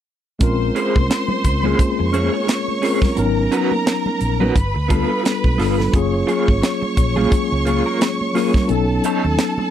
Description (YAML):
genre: lush 1970s-style soul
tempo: 87 BPM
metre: 4/4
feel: swing 58% on 16ths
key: Bb minor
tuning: A4 = 440 Hz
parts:
  - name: bright studio violin section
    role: second line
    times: 0.4-9.7 s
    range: A4 to Db6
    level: -24 LUFS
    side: right 1 dB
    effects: none
  - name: mellow tine electric piano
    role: accompaniment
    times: 0.4-9.7 s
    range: Gb3 to Cb5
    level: -20 LUFS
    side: left 3 dB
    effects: medium stereo tremolo
  - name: vintage muted fingered electric bass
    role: bass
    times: 0.4-9.4 s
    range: Gb1 to F2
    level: -21 LUFS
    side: equal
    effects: none
  - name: tight funk drum kit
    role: drums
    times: 0.4-9.6 s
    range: hi-hat, kick drum, snare drum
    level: -19 LUFS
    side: right 1 dB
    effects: none
  - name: congas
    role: percussion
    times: 0.4-9.7 s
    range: none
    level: -28 LUFS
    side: right 4 dB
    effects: none
  - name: electric guitar through a small old amp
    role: riff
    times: 0.8-9.6 s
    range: Bb3 to Db5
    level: -23 LUFS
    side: right 5 dB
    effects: tremolo
room: little or no reverb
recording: dry, close 1970s-style studio recording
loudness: -16 LUFS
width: side -10 dB against mid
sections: 0.4-9.7 A section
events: none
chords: 0.4 Bbm9; 3.2 Abm11; 4.6 G9; 5.9 Gbmaj9; 8.7 B9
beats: | 0.41 1.10 1.79 2.48 | 3.17 3.86 4.55 5.24 | 5.93 6.62 7.31 8.00 | 8.70 9.38